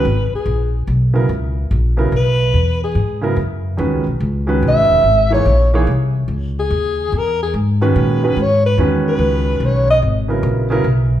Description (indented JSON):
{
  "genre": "jazz",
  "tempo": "144 BPM",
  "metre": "3/4",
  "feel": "swing 65% on 8ths",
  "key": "C# dorian",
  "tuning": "A4 = 440 Hz",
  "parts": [
    { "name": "breathy alto saxophone", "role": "melody", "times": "0.0-10.0 s", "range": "G#4 to E5", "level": "-17 LUFS", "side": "equal", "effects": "none" },
    { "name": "warm grand piano", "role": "accompaniment", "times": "0.0-10.8 s", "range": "C#3 to C#5", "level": "-19 LUFS", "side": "right 2 dB", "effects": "none" },
    { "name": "upright bass", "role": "bass", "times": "0.0-11.2 s", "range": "E1 to A#2", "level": "-16 LUFS", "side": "equal", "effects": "none" }
  ],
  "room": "moderate large studio reverb, RT60 1.4 s",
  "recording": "band playing live in one room",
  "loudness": "-14 LUFS",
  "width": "side -12 dB against mid",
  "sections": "0.0-11.2 A section",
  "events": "alto saxophone solo 0.0-11.2",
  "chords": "0.0 C#m11"
}